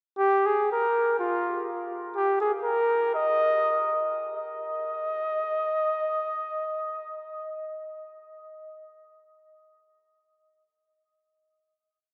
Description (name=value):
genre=alpine folk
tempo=97-122 BPM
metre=2/4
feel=straight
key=Eb major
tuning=A4 = 440 Hz
part: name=trumpet with bucket mute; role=solo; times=0.2-7.6 s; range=F4 to Eb5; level=-28 LUFS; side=equal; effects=none
room=wet cathedral reverb, RT60 6.1 s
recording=in a vast, echoing space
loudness=-27 LUFS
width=mono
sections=0.2-4.3 A section; 4.3-6.8 final note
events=slowing down 2.2-4.3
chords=none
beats=| 0.17 0.67 | 1.17 1.66 | 2.16 2.67 | 3.19 3.75 | 4.35 4.96 | 5.57 6.18